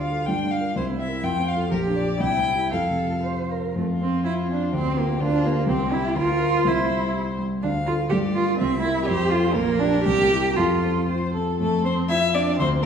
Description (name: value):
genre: quick classical-period movement for piano trio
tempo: 114-128 BPM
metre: 2/4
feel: rubato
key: F major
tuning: A4 = 440 Hz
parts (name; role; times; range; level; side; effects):
- warm violin; melody; 0.0-12.9 s; F4 to G5; -27 LUFS; left 4 dB; none
- rich cello; second line; 0.0-12.9 s; A3 to C5; -24 LUFS; right 3 dB; none
- dark concert grand piano; accompaniment; 0.0-12.9 s; Bb1 to F5; -24 LUFS; left 1 dB; none
room: wet recital hall reverb, RT60 1.4 s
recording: heard from further back in the room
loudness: -20 LUFS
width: side -7 dB against mid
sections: 0.0-3.8 A section; 3.8-11.6 B section; 11.6-12.9 B section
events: none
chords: 0.3 Gm7; 0.8 C7; 1.2 F; 1.7 Gm/Bb; 2.2 C; 2.7 F; 4.7 Bb/D; 5.2 Gm7/D; 5.7 C; 6.2 Bb/D; 6.7 C; 7.6 Dm; 8.1 Gm7; 8.6 C7; 9.1 F; 9.6 Gm/Bb; 10.1 C; 10.6 F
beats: 0.27 | 0.76 1.23 | 1.72 2.21 | 2.73 3.24 | 3.76 4.25 | 4.73 5.20 | 5.67 6.16 | 6.65 7.14 | 7.64 8.13 | 8.61 9.08 | 9.56 10.06 | 10.57 11.09 | 11.61 12.09 | 12.58